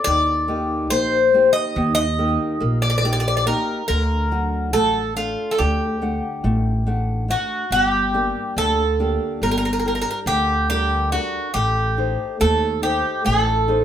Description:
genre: greek folk, Greek bouzouki band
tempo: 141 BPM (eighths)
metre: 9/8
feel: straight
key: G minor from 7.7 s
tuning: A4 = 440 Hz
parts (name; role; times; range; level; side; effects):
- Greek bouzouki; melody; 0.0-13.8 s; F4 to Eb5; -20 LUFS; equal; none
- fingerpicked old ladder-braced acoustic guitar; accompaniment; 0.1-13.8 s; D3 to F#5; -26 LUFS; left 1 dB; none
- upright bass; bass; 0.1-13.8 s; G1 to Eb2; -23 LUFS; equal; none
room: moderate studio reverb, RT60 0.8 s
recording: band playing live in one room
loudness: -18 LUFS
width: side -10 dB against mid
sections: 0.0-7.7 A section; 7.7-13.8 B section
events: none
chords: 0.1 Eb; 3.9 D; 7.7 Gm; 11.6 Adim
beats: | 0.07 0.49 0.92 1.34 1.77 2.19 2.62 3.04 3.47 | 3.89 4.32 4.74 5.17 5.59 6.02 6.44 6.87 7.29 | 7.72 8.15 8.57 9.00 9.43 9.85 10.28 10.70 11.13 | 11.56 11.98 12.41 12.84 13.26 13.69

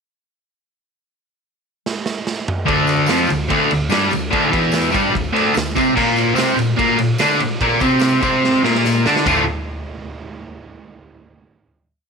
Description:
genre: garage rock duo or trio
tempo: 146 BPM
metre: 4/4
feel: straight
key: D minor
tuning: A4 = 439 Hz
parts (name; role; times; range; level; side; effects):
- raw garage drum kit; drums; 1.9-9.4 s; crash cymbal, kick drum, ride cymbal, snare drum, toms; -23 LUFS; right 3 dB; none
- cranked stack guitar; riff; 2.7-9.4 s; D2 to F4; -14 LUFS; equal; overdrive
- tambourine; percussion; 2.9-9.5 s; none; -34 LUFS; left 16 dB; none
room: studio reverb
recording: 1960s-style stereo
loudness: -14 LUFS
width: side -5 dB against mid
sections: 1.0-2.7 pickup bar; 2.7-9.3 riff; 9.3-10.9 final chord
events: drum fill 1.9-2.7, 8.4-9.3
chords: 1.0 N.C.; 2.7 Dm; 6.0 Bbadd9; 9.3 Dm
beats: | 1.03 1.44 1.86 2.27 | 2.68 3.09 3.50 3.91 | 4.32 4.73 5.14 5.55 | 5.96 6.37 6.78 7.19 | 7.60 8.02 8.43 8.84 | 9.25

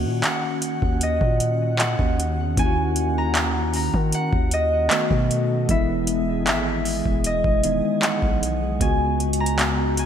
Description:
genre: contemporary R&B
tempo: 77 BPM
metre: 4/4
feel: straight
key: Eb phrygian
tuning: A4 = 440 Hz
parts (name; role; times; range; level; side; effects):
- concert harp; melody; 0.0-10.1 s; Eb5 to Bb5; -26 LUFS; equal; ping-pong delay
- tine electric piano; accompaniment; 0.0-10.1 s; Db3 to Gb4; -26 LUFS; left 1 dB; medium stereo tremolo
- glassy FM pad; sustained chords; 0.0-10.1 s; Db3 to Gb5; -30 LUFS; left 1 dB; ensemble chorus, built-in reverb
- long sustained 808-style bass; bass; 0.0-10.1 s; E1 to Eb3; -25 LUFS; equal; none
- booming analog drum machine; drums; 0.2-10.1 s; handclaps, hi-hat, kick drum; -23 LUFS; equal; overdrive
room: light reverb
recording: bright 1980s-style digital production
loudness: -19 LUFS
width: side -8 dB against mid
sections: 0.0-10.1 A section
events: none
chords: 0.0 Ebm7; 4.9 B7; 5.7 Emaj7; 8.8 Db7sus4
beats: 0.24 1.02 1.80 | 2.58 3.35 4.13 4.91 | 5.69 6.47 7.25 8.03 | 8.81 9.59

